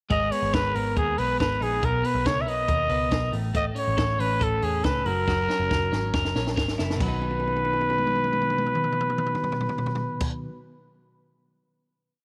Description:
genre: jangly indie pop.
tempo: 139 BPM.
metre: 4/4.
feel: straight.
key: B major.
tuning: A4 = 439 Hz.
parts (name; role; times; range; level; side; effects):
growling trumpet; melody; 0.1-10.3 s; G#4 to E5; -28 LUFS; equal; slapback echo.
twelve-string electric guitar; arpeggios; 0.1-10.6 s; A2 to A#4; -32 LUFS; equal; spring reverb, slapback echo.
vintage muted picked electric bass; bass; 0.1-10.3 s; F#1 to E2; -32 LUFS; equal; none.
compact cocktail drum kit; drums; 0.1-10.3 s; crash cymbal, hi-hat, kick drum, snare drum, toms; -32 LUFS; equal; none.
room: light reverb, studio ambience.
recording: none.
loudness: -25 LUFS.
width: mono.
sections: 0.1-7.0 pre-chorus; 7.0-10.5 final chord.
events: drum fill 5.3-7.0, 7.2-10.2.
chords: 0.1 G#madd9; 1.8 Bmaj7; 3.3 A; 5.1 F#; 7.0 B.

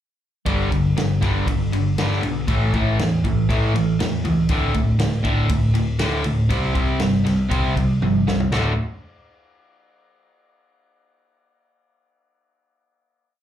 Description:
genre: classic rock.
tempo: 119 BPM.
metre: 4/4.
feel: straight.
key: unclear.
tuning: A4 = 439 Hz.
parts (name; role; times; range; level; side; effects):
distorted electric guitar; riff; 0.5-8.7 s; D2 to F#4; -20 LUFS; equal; distortion, slapback echo.
overdriven picked electric bass; bass; 0.5-8.8 s; D1 to A2; -22 LUFS; equal; none.
vintage drum kit; drums; 0.5-8.6 s; crash cymbal, kick drum, ride cymbal, snare drum, toms; -25 LUFS; equal; none.
room: little or no reverb.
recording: live gig heard through the venue's PA, club reverb.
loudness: -18 LUFS.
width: side -11 dB against mid.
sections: 0.5-8.5 pre-chorus; 8.5-10.5 final chord.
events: drum fill 8.0-8.5.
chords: 0.5 G5; 2.5 A5; 4.5 D5; 6.5 C5; 8.5 D.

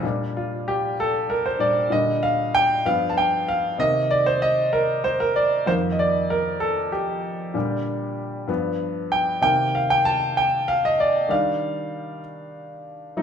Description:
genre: gospel.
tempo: 64 BPM (dotted quarters).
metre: 6/8.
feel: straight.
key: Bb major.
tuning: A4 = 441 Hz.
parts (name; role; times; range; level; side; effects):
clear grand piano; solo; 0.0-13.2 s; F2 to A5; -20 LUFS; equal; none.
room: wet large studio reverb, RT60 0.9 s.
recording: band playing live in one room.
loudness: -20 LUFS.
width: side -8 dB against mid.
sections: 0.0-13.2 A section.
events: grand piano solo 0.0-13.2.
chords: 0.0 Bb6; 2.9 G7; 3.8 Cm7; 5.7 F9sus4; 7.5 Bb6; 8.5 G7; 9.4 Cm7; 11.3 Ebmaj9.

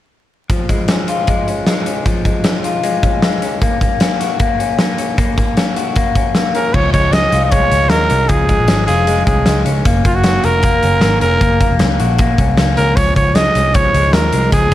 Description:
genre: jangly indie pop.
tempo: 154 BPM.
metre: 4/4.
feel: straight.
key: Db major.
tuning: A4 = 440 Hz.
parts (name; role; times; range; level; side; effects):
electric guitar through a small old amp; arpeggios; 0.5-14.7 s; F3 to Gb4; -18 LUFS; left 4 dB; spring reverb, plate reverb, analog delay.
big rock drum kit; drums; 0.5-14.7 s; crash cymbal, hi-hat, kick drum, snare drum; -16 LUFS; equal; none.
growling trumpet; melody; 6.6-14.7 s; F4 to Eb5; -16 LUFS; right 2 dB; plate reverb, analog delay.
vintage muted picked electric bass; bass; 6.7-14.7 s; F1 to Eb2; -16 LUFS; equal; none.
room: light reverb.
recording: vinyl crackle.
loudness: -12 LUFS.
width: side -13 dB against mid.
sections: 0.5-6.7 A section; 6.7-14.7 B section.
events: none.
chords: 0.5 Db; 3.6 Gb; 6.7 Db; 9.9 Gb; 13.0 Db.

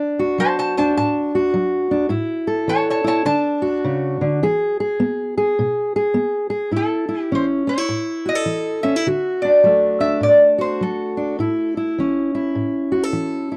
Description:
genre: acoustic country blues, solo or duo.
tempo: 103 BPM.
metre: 4/4.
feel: swing 64% on 8ths.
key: A major.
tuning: A4 = 440 Hz.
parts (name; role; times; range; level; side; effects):
fingerpicked steel-string acoustic guitar; accompaniment; 0.0-13.6 s; A2 to A4; -21 LUFS; equal; none.
lap resonator guitar; melody; 0.4-11.9 s; A4 to A5; -20 LUFS; equal; none.
room: light reverb.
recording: dry, close 1970s-style studio recording.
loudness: -19 LUFS.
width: mono.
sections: 0.0-6.7 A section; 6.7-13.6 B section.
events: resonator guitar played with a steel bar solo 0.0-6.7.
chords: 0.0 D; 2.1 A; 3.3 D; 4.4 E; 6.7 A; 9.1 D; 11.4 A.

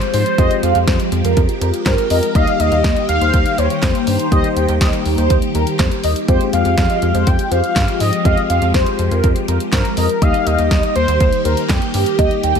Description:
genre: synth-pop.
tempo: 122 BPM.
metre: 4/4.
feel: straight.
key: unclear.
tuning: A4 = 440 Hz.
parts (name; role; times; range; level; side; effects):
warm velvety synth lead; melody; 0.0-12.6 s; G4 to G5; -20 LUFS; equal; chorus.
tine electric piano; accompaniment; 0.0-12.6 s; G3 to G4; -23 LUFS; left 8 dB; phaser.
phased string machine; sustained chords; 0.0-12.6 s; Eb3 to G4; -22 LUFS; equal; ensemble chorus, phaser.
deep house drum kit; drums; 0.0-12.6 s; handclaps, hi-hat, kick drum, snare drum; -18 LUFS; equal; none.
rubbery square bass; bass; 0.1-12.6 s; Eb2 to Ab2; -18 LUFS; equal; none.
mellow synth brass; second line; 0.4-12.6 s; Bb4 to G5; -22 LUFS; right 2 dB; chorus, phaser, tape echo.
room: light reverb, digital ambience.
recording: none.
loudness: -13 LUFS.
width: side -7 dB against mid.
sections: 0.0-12.6 A section.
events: none.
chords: 0.0 Fmadd9; 2.4 Eb; 6.3 Fmadd9; 10.2 Eb.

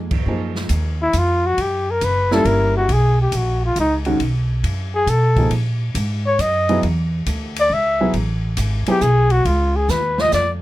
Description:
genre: jazz, small-group swing and bop.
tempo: 137 BPM.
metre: 3/4.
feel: swing 67% on 8ths.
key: F# major.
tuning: A4 = 440 Hz.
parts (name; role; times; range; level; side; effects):
warm baby grand piano; accompaniment; 0.0-9.0 s; D#3 to Ab4; -21 LUFS; right 1 dB; none.
upright bass; bass; 0.0-10.6 s; F#1 to B2; -20 LUFS; equal; none.
open jazz drum kit; drums; 0.1-10.5 s; crash cymbal, hi-hat, kick drum, ride cymbal, snare drum; -28 LUFS; equal; none.
warm flugelhorn; melody; 1.0-10.5 s; D#4 to E5; -18 LUFS; left 1 dB; none.
room: little or no reverb.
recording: close, detailed microphones.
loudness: -16 LUFS.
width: side -16 dB against mid.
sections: 0.3-10.6 A section.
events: drum fill 9.9-10.6.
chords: 0.3 F#maj7; 1.6 F#7b9; 2.9 Bmaj7sus2; 4.2 B7(no3); 5.5 F#69; 6.8 E7(no3); 8.1 A5; 9.5 C#9.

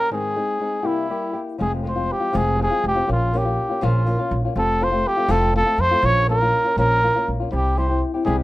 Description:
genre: mexican folk, mariachi.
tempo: 81 BPM (dotted quarters).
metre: 6/8.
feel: straight.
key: unclear.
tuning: A4 = 440 Hz.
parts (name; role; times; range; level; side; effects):
mellow trumpet; melody; 0.0-8.4 s; E4 to Db5; -20 LUFS; equal; none.
flamenco guitar; accompaniment; 0.0-8.4 s; F2 to Ab4; -25 LUFS; left 3 dB; none.
upright bass; bass; 1.6-8.4 s; F1 to F2; -22 LUFS; equal; none.
room: little or no reverb.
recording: rough home demo mix.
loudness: -18 LUFS.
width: side -17 dB against mid.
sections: 0.0-1.6 A section; 1.6-8.4 B section.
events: break 0.1-1.6.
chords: 0.1 Ab; 0.8 C7; 1.6 Fm; 3.1 Bbm; 4.5 F; 6.0 Bbm; 7.5 C.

